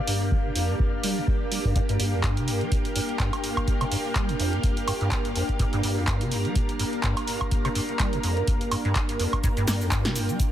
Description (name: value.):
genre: acid house.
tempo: 125 BPM.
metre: 4/4.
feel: swing 56% on 16ths.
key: G minor pentatonic.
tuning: A4 = 445 Hz.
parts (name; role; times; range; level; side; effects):
string machine, full ensemble; sustained chords; 0.0-10.5 s; Bb3 to F5; -32 LUFS; left 1 dB; ensemble chorus, sidechain pumping.
airy breathy pad; texture; 0.0-10.5 s; D4 to Bb5; -32 LUFS; right 2 dB; chorus, phaser, sidechain pumping.
deep acid bass; riff; 0.1-10.4 s; F2 to G3; -28 LUFS; equal; ensemble chorus, digital delay.
punchy analog drum machine; drums; 0.1-10.5 s; handclaps, hi-hat, shaker, snare drum, woodblock; -30 LUFS; right 1 dB; none.
electronic kick drum; drums; 0.3-10.5 s; none; -26 LUFS; equal; none.
room: light reverb.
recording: none.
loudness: -23 LUFS.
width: side -11 dB against mid.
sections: 0.0-10.5 A section.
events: filter sweep on acid bass 0.0-10.5.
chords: 0.0 Gm.